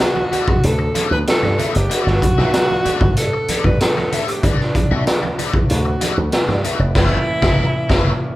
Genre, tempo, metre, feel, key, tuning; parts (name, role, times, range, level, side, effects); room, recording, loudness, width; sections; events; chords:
funk; 95 BPM; 4/4; straight; A4 = 442 Hz
breathy tenor saxophone; melody; 0.0-8.4 s; D4 to B4; -22 LUFS; right 1 dB
crunchy overdriven guitar; accompaniment; 0.0-8.1 s; A#3 to E5; -26 LUFS; left 5 dB; wah
bright tonewheel organ; sustained chords; 0.0-8.4 s; E3 to D4; -32 LUFS; equal
raw garage drum kit; drums; 0.0-8.1 s; crash cymbal, hi-hat, kick drum, snare drum; -18 LUFS; equal
congas; percussion; 0.2-6.8 s; -30 LUFS; right 4 dB
slap bass with an envelope filter; bass; 0.6-8.1 s; E#1 to G2; -20 LUFS; equal
light reverb; band playing live in one room; -14 LUFS; side -16 dB against mid
0.0-8.4 A section
band accent 7.0-8.4
0.0 Gmaj9; 7.0 F#7#9